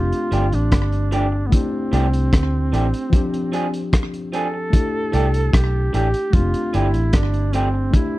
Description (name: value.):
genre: lovers rock reggae.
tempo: 75 BPM.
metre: 4/4.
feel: straight.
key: unclear.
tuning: A4 = 440 Hz.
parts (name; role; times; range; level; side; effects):
warm duduk; melody; 0.0-8.2 s; B3 to A4; -25 LUFS; right 2 dB; tape echo.
tine electric piano; accompaniment; 0.0-8.2 s; F3 to G4; -26 LUFS; left 4 dB; none.
vintage muted fingered electric bass; bass; 0.0-7.9 s; F1 to D2; -19 LUFS; equal; none.
crunchy breakbeat drum kit; drums; 0.1-8.1 s; hi-hat, kick drum, rim click; -18 LUFS; equal; none.
electric guitar through a small old amp; stabs; 0.3-7.8 s; E3 to Ab4; -23 LUFS; right 2 dB; none.
room: little or no reverb.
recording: dry, close 1970s-style studio recording.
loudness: -17 LUFS.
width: side -17 dB against mid.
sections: 0.0-8.2 A section.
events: none.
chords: 0.0 F69; 1.5 C69; 3.1 Fm6; 4.7 C69; 6.3 F69.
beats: 0.72 | 1.52 2.32 3.13 3.93 | 4.73 5.53 6.33 7.13 | 7.94.